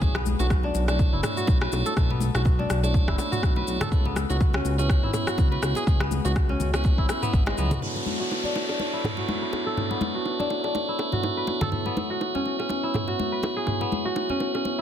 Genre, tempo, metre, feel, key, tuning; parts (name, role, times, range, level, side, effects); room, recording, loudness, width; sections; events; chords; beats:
afro house; 123 BPM; 4/4; swing 55% on 16ths; B dorian; A4 = 438 Hz
kora; arpeggios; 0.0-14.8 s; G#3 to B4; -29 LUFS; left 1 dB; sidechain pumping, low-pass filter, ping-pong delay
tonewheel organ; stabs; 0.0-14.8 s; A3 to C#5; -31 LUFS; right 4 dB; stopped rotary speaker, sidechain pumping, low-pass filter, ping-pong delay
smooth synth bass; bass; 0.0-7.8 s; F#1 to C#2; -26 LUFS; equal; sidechain pumping
afro-pop drum kit; drums; 0.0-13.8 s; cabasa, rim click, toms; -31 LUFS; equal; soft clipping on snare, low-pass filter on snare, low-pass filter on toms, low-pass filter on perc, low-pass filter on room
electronic kick drum; drums; 0.0-7.4 s; -22 LUFS; equal; overdrive
congas; percussion; 0.2-14.8 s; -34 LUFS; left 5 dB
bongos; percussion; 0.4-14.8 s; -35 LUFS; right 1 dB
downlifter; sound effects; 7.8-11.7 s; -34 LUFS; equal
light reverb; dense, heavily limited modern master; -22 LUFS; side -10 dB against mid
0.0-7.8 A section; 7.8-14.8 B section
drum fill 7.6; filter sweep on drum 7.8-14.8; filter sweep on kora 7.8-14.8
0.0 Bm11; 3.9 C#m7; 7.8 Bm11; 11.7 C#m7
| 0.02 0.51 0.99 1.48 | 1.97 2.46 2.94 3.43 | 3.92 4.41 4.89 5.38 | 5.87 6.36 6.85 7.33 | 7.82 8.31 8.80 9.29 | 9.77 10.26 10.75 11.24 | 11.72 12.21 12.70 13.19 | 13.68 14.16 14.65